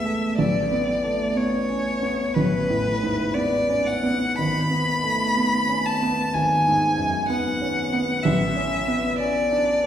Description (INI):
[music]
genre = classical, romantic duo for violin and grand piano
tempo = 61 BPM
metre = 4/4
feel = rubato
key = unclear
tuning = A4 = 440 Hz
[part]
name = clear violin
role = melody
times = 0.0-9.9 s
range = B4 to B5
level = -23 LUFS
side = left 1 dB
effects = none
[part]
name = warm concert grand piano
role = accompaniment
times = 0.0-9.9 s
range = G#1 to D4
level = -23 LUFS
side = right 1 dB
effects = none
[sound]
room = wet recital hall reverb, RT60 1.8 s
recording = recorded in a church or concert hall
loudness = -20 LUFS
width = side -10 dB against mid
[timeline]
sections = 0.0-9.9 A section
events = none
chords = 0.4 Bm7/A; 4.4 G#m7; 8.2 A